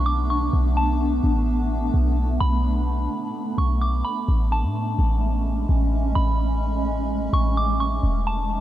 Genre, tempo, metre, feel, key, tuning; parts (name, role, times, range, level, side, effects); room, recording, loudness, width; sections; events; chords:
hip hop, atmospheric cloud-rap; 128 BPM; 4/4; half-time; B dorian; A4 = 440 Hz
soft synth bell; melody; 0.0-8.6 s; A5 to D6; -29 LUFS; right 1 dB; chorus, phaser, low-pass filter, tape echo
granular cloud pad; sustained chords; 0.0-8.6 s; E3 to D4; -26 LUFS; right 1 dB; built-in reverb
clean 808-style bass; bass; 0.0-8.6 s; E1 to A2; -21 LUFS; equal
light reverb, digital ambience; -20 LUFS; side -13 dB against mid
0.0-8.6 A section
0.0 Bm7; 4.3 Amaj9; 8.0 E7